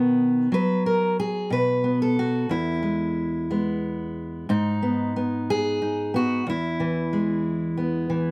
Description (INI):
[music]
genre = folk, solo fingerstyle acoustic guitar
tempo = 61 BPM (dotted quarters)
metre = 6/8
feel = rubato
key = E major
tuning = A4 = 440 Hz
[part]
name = fingerpicked steel-string acoustic guitar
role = solo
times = 0.0-8.3 s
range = E2 to B4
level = -24 LUFS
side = equal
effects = none
[sound]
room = moderate studio reverb, RT60 0.6 s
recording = none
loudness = -24 LUFS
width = mono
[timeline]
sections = 0.0-4.5 A section; 4.5-8.3 B section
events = none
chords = 0.0 B; 0.5 N.C.; 2.5 E; 4.5 G#m; 6.5 E